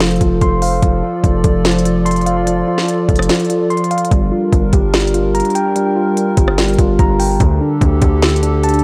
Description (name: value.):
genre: hip hop, trap.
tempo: 146 BPM.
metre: 4/4.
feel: half-time.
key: G minor.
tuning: A4 = 440 Hz.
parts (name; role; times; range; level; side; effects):
hollow soft pad; sustained chords; 0.0-8.8 s; D3 to D5; -24 LUFS; equal; chorus.
mellow tine electric piano; arpeggios; 0.0-8.8 s; D3 to C6; -18 LUFS; equal; low-pass filter, delay.
distorted 808-style bass; bass; 0.0-8.8 s; F1 to D2; -20 LUFS; equal; distortion.
trap drum kit; drums; 0.0-8.8 s; hi-hat, kick drum, rim click, snare drum; -19 LUFS; equal; none.
room: light reverb.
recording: none.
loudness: -14 LUFS.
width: mono.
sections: 0.0-8.8 A section.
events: kick muted 3.3-4.1.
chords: 0.0 F; 4.1 Gm7; 7.4 Dsus4.